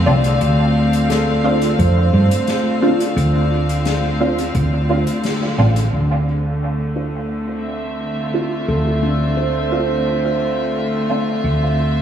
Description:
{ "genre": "ambient dub", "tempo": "87 BPM", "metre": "4/4", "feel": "straight", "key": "D minor", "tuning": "A4 = 440 Hz", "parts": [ { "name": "rich chamber string section", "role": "sustained chords", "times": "0.0-12.0 s", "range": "D3 to F5", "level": "-20 LUFS", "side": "equal", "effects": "low-pass filter" }, { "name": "hollow-body short-scale fingered electric bass", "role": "bass", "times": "0.0-12.0 s", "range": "A1 to G2", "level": "-18 LUFS", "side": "equal", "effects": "none" }, { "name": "handpan", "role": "arpeggios", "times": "0.1-11.8 s", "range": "D4 to D5", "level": "-24 LUFS", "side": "equal", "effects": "low-pass filter, diffuse ambient delay" }, { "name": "filtered dub chord stab", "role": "stabs", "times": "0.1-11.2 s", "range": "C4 to F4", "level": "-24 LUFS", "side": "right 2 dB", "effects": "phaser, ensemble chorus, vintage 12-bit sampler grit, dub echo" }, { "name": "soft-mallet drum kit", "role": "drums", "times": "0.2-5.9 s", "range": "hi-hat, snare drum", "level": "-29 LUFS", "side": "left 4 dB", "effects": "dub echo" }, { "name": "electronic kick drum", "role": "drums", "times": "1.8-4.7 s", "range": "none", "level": "-24 LUFS", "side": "equal", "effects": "none" } ], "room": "wet lush hall reverb, RT60 2.6 s", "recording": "dreamy mix soaked in reverb, small room reverb", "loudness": "-15 LUFS", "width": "side -9 dB against mid", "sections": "0.0-5.9 A section; 5.9-12.0 B section", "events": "filter sweep on handpan 0.0-5.9; band accent 5.2-5.6; filter sweep on string section 5.9-12.0", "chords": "0.0 Dm7" }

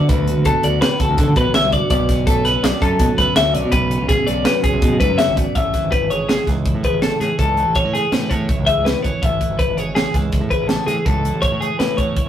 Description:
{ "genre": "math rock and midwest emo", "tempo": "164 BPM", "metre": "5/4", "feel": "straight", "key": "A major", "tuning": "A4 = 441 Hz", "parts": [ { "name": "twelve-string electric guitar", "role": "accompaniment", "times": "0.0-12.3 s", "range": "F#2 to G#4", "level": "-24 LUFS", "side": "right 6 dB", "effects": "spring reverb" }, { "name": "twelve-string electric guitar", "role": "arpeggios", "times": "0.0-12.3 s", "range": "G#4 to E5", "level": "-19 LUFS", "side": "left 3 dB", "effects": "warbly pitch drift" }, { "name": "growling picked electric bass", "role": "bass", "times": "0.0-12.3 s", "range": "G#1 to D3", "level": "-22 LUFS", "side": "equal", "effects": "overdrive" }, { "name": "crisp fusion drum kit", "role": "drums", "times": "0.1-12.3 s", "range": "hi-hat, kick drum, snare drum", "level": "-20 LUFS", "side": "equal", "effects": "none" } ], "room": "moderate studio reverb, RT60 0.6 s", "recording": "rough rehearsal-room recording", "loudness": "-15 LUFS", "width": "side -10 dB against mid", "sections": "0.0-5.6 A section; 5.6-12.3 B section", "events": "none", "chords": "0.0 D6; 1.9 Bm9; 5.6 Amaj7" }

